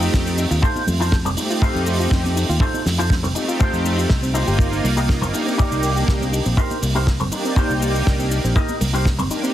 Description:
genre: nu-disco, nu disco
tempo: 121 BPM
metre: 4/4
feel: straight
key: C dorian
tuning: A4 = 440 Hz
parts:
  - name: warm analog pad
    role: accompaniment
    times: 0.0-9.5 s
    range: A3 to D5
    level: -25 LUFS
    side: equal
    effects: chorus, sidechain pumping, digital delay
  - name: soft round pluck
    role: arpeggios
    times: 0.0-9.5 s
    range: A3 to G4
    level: -28 LUFS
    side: left 2 dB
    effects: chorus, sidechain pumping, ping-pong delay
  - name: electric guitar with an envelope filter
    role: riff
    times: 0.0-9.3 s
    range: Eb4 to Eb5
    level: -26 LUFS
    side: equal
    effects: lush chorus, digital delay
  - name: fingered electric bass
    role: bass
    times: 0.0-9.3 s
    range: F1 to F2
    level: -21 LUFS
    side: equal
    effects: tube saturation, sidechain pumping
  - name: damped 70s drum kit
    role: drums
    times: 0.0-9.5 s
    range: cabasa, hi-hat, snare drum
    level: -26 LUFS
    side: right 2 dB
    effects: none
  - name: kick drum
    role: drums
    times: 0.1-9.2 s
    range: none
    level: -19 LUFS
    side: equal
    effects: none
  - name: congas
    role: percussion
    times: 0.8-9.4 s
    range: none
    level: -31 LUFS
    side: right 2 dB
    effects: none
room: studio ambience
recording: heavily compressed radio sound, multiband compression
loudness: -17 LUFS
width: side -12 dB against mid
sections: 0.0-9.5 A section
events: none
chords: 0.0 F7; 4.3 Cm7

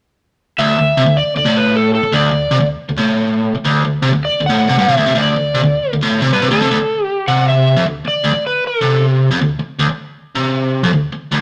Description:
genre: rock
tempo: 157 BPM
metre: 4/4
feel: straight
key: D major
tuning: A4 = 440 Hz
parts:
  - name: overdriven slide guitar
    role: melody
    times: 0.6-9.0 s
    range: A4 to F#5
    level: -18 LUFS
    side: equal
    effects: none
  - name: biting overdriven guitar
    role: riff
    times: 0.6-11.4 s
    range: D2 to C3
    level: -16 LUFS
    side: equal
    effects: none
room: moderate stone room reverb, RT60 1.1 s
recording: rough rehearsal-room recording, tube saturation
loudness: -15 LUFS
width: mono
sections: 0.6-6.7 A section; 6.7-11.4 B section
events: none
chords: 0.6 D5; 6.7 N.C.

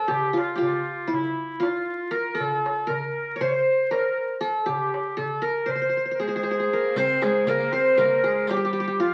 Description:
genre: Turkish makam ensemble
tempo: 237 BPM (eighths)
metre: 9/8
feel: straight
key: unclear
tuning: A4 = 442 Hz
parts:
  - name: qanun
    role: melody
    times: 0.0-9.1 s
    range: E4 to Db5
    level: -26 LUFS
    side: equal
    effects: none
  - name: clear clarinet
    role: second line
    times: 0.0-9.1 s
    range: E4 to Db5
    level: -30 LUFS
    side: equal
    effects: none
  - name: darbuka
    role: percussion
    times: 0.1-9.1 s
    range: none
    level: -39 LUFS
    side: equal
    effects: none
  - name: rich symphonic cello section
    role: second line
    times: 6.2-9.1 s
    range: F3 to C4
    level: -34 LUFS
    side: equal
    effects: none
  - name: riq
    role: percussion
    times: 7.0-8.6 s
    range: none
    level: -40 LUFS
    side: equal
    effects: none
room: wet studio reverb, RT60 0.9 s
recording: very old 78 rpm record, vinyl crackle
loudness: -24 LUFS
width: mono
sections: 0.0-7.0 A section; 7.0-9.1 B section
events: none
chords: none

